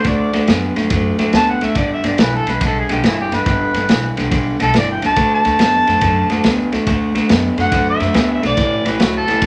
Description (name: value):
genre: electric blues shuffle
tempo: 141 BPM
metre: 4/4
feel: swing 66% on 8ths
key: D major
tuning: A4 = 438 Hz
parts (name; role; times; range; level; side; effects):
- mellow harmonica; melody; 0.0-9.5 s; E4 to A5; -20 LUFS; equal; overdrive
- electric guitar through a small old amp; riff; 0.0-9.5 s; G2 to B3; -21 LUFS; equal; none
- upright bass; bass; 0.0-9.5 s; G1 to F#2; -26 LUFS; equal; none
- crunchy breakbeat drum kit; drums; 0.0-9.5 s; kick drum, ride cymbal, snare drum; -20 LUFS; equal; none
room: light reverb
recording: none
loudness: -16 LUFS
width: mono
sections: 0.0-9.5 A section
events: harmonica solo 0.0-9.5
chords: 0.0 D; 1.8 G; 5.2 D; 8.6 A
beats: | 0.05 0.48 0.91 1.33 | 1.76 2.19 2.61 3.04 | 3.46 3.89 4.32 4.74 | 5.17 5.59 6.02 6.44 | 6.87 7.29 7.72 8.14 | 8.57 8.99 9.42